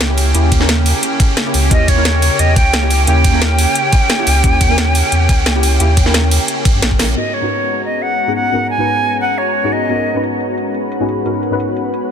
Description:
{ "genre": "liquid drum and bass", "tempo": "176 BPM", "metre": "4/4", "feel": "straight", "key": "G# minor", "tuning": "A4 = 440 Hz", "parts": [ { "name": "deep mellow chord stab", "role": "accompaniment", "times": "0.0-12.1 s", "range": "G#2 to B4", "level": "-21 LUFS", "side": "left 1 dB", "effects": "chorus, ping-pong delay" }, { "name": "lush unison pad", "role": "sustained chords", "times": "0.0-12.1 s", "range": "C#3 to A#5", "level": "-21 LUFS", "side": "equal", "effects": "chorus, sidechain pumping" }, { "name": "warm sub bass", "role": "bass", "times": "0.0-7.2 s", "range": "A#1 to G2", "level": "-14 LUFS", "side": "equal", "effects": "none" }, { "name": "drum and bass drum kit", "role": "drums", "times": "0.0-12.0 s", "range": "hi-hat, ride cymbal, snare drum", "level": "-18 LUFS", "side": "right 1 dB", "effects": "low-pass filter on hats, soft clipping on snare, low-pass filter on snare, low-pass filter on cymbals, low-pass filter on room" }, { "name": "electronic kick drum", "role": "drums", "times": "0.5-7.0 s", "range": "none", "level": "-13 LUFS", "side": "equal", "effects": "none" }, { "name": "silver concert flute", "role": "melody", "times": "1.7-10.2 s", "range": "C#5 to G#5", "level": "-18 LUFS", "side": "equal", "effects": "ping-pong delay" } ], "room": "light reverb, digital ambience", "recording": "dense, heavily limited modern master", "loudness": "-12 LUFS", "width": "side -8 dB against mid", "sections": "0.0-7.2 A section; 7.2-12.1 B section", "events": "drop 0.0-7.2; drum fill 7.0; band accent 7.0", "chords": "0.0 D#7b9; 7.2 G#m11", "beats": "0.01 | 0.35 0.69 1.03 1.37 | 1.71 2.05 2.39 2.73 | 3.08 3.42 3.76 4.10 | 4.44 4.78 5.12 5.46 | 5.80 6.14 6.48 6.83 | 7.17 7.51 7.85 8.19 | 8.53 8.87 9.21 9.55 | 9.89 10.23 10.57 10.92 | 11.26 11.60 11.94" }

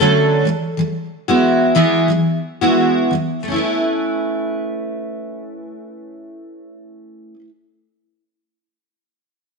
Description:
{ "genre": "pop", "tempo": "84-96 BPM", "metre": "4/4", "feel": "swing 55% on 16ths", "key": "A major", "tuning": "A4 = 439 Hz", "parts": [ { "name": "picked steel-string acoustic guitar", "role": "accompaniment", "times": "0.0-7.5 s", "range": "D3 to B4", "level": "-16 LUFS", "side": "equal", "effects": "double-tracked left and right" } ], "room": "wet plate reverb, RT60 1.8 s, digital ambience", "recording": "1960s-style stereo", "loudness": "-15 LUFS", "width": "side -4 dB against mid", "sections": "0.0-3.5 A section; 3.5-6.3 B section", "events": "slowing down 0.0-3.5", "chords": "0.5 Eadd9; 3.5 Aadd9", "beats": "0.14 | 0.77 1.42 2.08 2.77 | 3.47 4.19 4.91 5.62" }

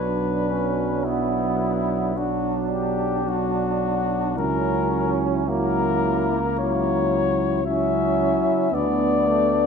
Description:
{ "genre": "classical, hymn-like piece for brass band", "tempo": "54 BPM", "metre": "4/4", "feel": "rubato", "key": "B minor", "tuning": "A4 = 440 Hz", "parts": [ { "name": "warm cornet", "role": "melody", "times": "0.0-9.7 s", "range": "E4 to E5", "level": "-25 LUFS", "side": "left 7 dB", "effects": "none" }, { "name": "warm flugelhorn", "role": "second line", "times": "0.0-9.7 s", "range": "A3 to D4", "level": "-27 LUFS", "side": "right 7 dB", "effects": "none" }, { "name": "clear euphonium", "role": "accompaniment", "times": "0.0-9.7 s", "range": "F#3 to B3", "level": "-27 LUFS", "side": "right 5 dB", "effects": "none" }, { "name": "mellow trombone section", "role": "accompaniment", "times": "0.0-9.7 s", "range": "D4 to E4", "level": "-28 LUFS", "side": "left 3 dB", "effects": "none" }, { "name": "dark tuba", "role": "bass", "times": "0.0-9.7 s", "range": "B1 to D2", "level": "-28 LUFS", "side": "equal", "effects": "none" } ], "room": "moderate concert hall reverb, RT60 2.4 s", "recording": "minimal, uncompressed stereo recording", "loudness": "-20 LUFS", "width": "side -6 dB against mid", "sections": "0.0-9.7 A section", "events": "none", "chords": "0.0 Bm; 4.4 F#7/C#; 8.7 Bm/D", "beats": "1.04 2.16 3.26 | 4.37 5.48 6.58 7.66 | 8.73" }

